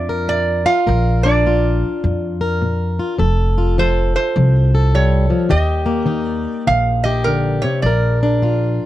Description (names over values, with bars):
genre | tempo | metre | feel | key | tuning
acoustic country blues, solo or duo | 104 BPM | 4/4 | swing 64% on 8ths | Bb major | A4 = 441 Hz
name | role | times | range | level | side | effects
metal-body resonator slide guitar | melody | 0.0-8.9 s | Bb4 to F5 | -20 LUFS | right 4 dB | none
fingerpicked plugged-in swing-style acoustic guitar | accompaniment | 0.0-8.9 s | Bb2 to Bb4 | -19 LUFS | left 2 dB | none
upright bass | bass | 0.0-8.8 s | F1 to F2 | -17 LUFS | equal | none
room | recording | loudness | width
little or no reverb | dry, close 1970s-style studio recording | -14 LUFS | side -14 dB against mid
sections
0.0-8.9 A section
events
none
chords
0.0 Bb; 3.2 F; 5.5 Eb; 7.8 Bb